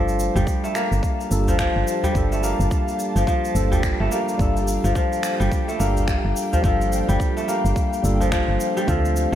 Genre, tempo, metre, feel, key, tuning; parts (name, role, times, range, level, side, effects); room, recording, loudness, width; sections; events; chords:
organic downtempo; 107 BPM; 4/4; swing 60% on 16ths; G minor; A4 = 438 Hz
tine electric piano; accompaniment; 0.0-9.3 s; G3 to A4; -27 LUFS; right 2 dB; overdrive, sidechain pumping, digital delay
ethereal airy pad; sustained chords; 0.9-9.3 s; G4 to C6; -32 LUFS; left 1 dB; ensemble chorus, built-in reverb, sidechain pumping
kora; arpeggios; 0.0-9.3 s; F3 to G4; -24 LUFS; left 1 dB; digital delay
woody FM bass; bass; 0.0-9.3 s; G1 to D2; -22 LUFS; equal; sidechain pumping
electronic shaker and finger snaps; drums; 0.1-9.3 s; -32 LUFS; equal
udu; percussion; 0.4-9.3 s; -27 LUFS; equal
electronic kick drum; drums; 0.5-9.0 s; -24 LUFS; equal
light reverb, digital ambience; -19 LUFS; side -11 dB against mid
0.0-9.3 A section
0.0 Gm9